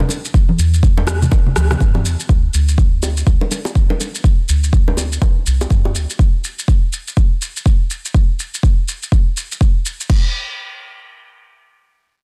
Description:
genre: afro house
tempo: 123 BPM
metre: 4/4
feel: swing 60% on 16ths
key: E minor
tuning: A4 = 440 Hz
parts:
  - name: bongos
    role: percussion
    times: 0.0-5.9 s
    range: none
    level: -27 LUFS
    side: equal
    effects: none
  - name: congas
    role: percussion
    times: 0.0-2.0 s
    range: none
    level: -22 LUFS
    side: equal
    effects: none
  - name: deep house drum kit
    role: drums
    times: 0.1-10.2 s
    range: crash cymbal, rim click, shaker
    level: -26 LUFS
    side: equal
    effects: none
  - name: electronic kick drum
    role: drums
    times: 0.3-10.2 s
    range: none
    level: -15 LUFS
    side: equal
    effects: none
  - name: round analog bass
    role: bass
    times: 0.6-6.1 s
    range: C2 to G2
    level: -19 LUFS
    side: equal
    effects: sidechain pumping
room: digital ambience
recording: dense, heavily limited modern master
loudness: -16 LUFS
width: mono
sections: 0.0-10.1 A section; 10.1-12.2 B section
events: none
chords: none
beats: | 0.34 0.83 1.32 1.80 | 2.29 2.78 3.27 3.75 | 4.24 4.73 5.22 5.71 | 6.19 6.68 7.17 7.66 | 8.14 8.63 9.12 9.61 | 10.10

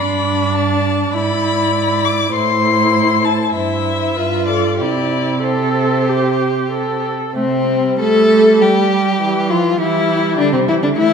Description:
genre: quick classical-period movement for string quartet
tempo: 97 BPM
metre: 4/4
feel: uneven beats, rubato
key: C major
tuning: A4 = 439 Hz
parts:
  - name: warm violin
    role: melody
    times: 0.0-11.1 s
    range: C4 to D6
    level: -20 LUFS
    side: left 8 dB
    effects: none
  - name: rich violin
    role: second line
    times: 0.0-11.1 s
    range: C4 to D5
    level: -18 LUFS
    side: left 2 dB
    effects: none
  - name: rich viola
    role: accompaniment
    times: 0.0-11.1 s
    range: E3 to A4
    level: -20 LUFS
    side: right 2 dB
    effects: none
  - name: rich cello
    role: bass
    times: 0.0-11.1 s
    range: G2 to A3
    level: -19 LUFS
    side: right 5 dB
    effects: none
room: wet scoring stage reverb, RT60 1.5 s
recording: minimal, uncompressed stereo recording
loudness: -13 LUFS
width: side -6 dB against mid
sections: 0.0-7.4 A section; 7.4-11.1 B section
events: none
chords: 0.0 G; 1.1 E7/G#; 2.3 Am; 3.5 C/G; 4.2 G7; 4.8 C; 9.8 G5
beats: 0.55 1.14 1.74 | 2.35 2.95 3.55 4.17 | 4.80 5.44 6.08 6.72 | 7.35 8.00 8.61 9.21 | 9.80 10.39 10.97

